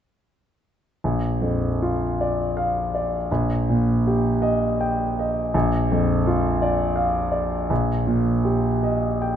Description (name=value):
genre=classical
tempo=81 BPM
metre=3/4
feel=uneven beats, rubato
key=Bb major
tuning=A4 = 441 Hz
part: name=clear concert grand piano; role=melody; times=1.0-9.4 s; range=Bb1 to G5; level=-20 LUFS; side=equal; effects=none
room=wet concert hall reverb, RT60 2.3 s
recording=dark, warm production, nothing above 8.0 kHz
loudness=-20 LUFS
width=side -9 dB against mid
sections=1.0-9.4 A section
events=none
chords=1.0 Bb; 3.3 Eb/Bb; 5.5 Bb; 7.7 Eb/Bb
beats=| 1.01 1.79 2.54 | 3.29 4.05 4.79 | 5.54 6.26 6.98 | 7.70 8.45 9.22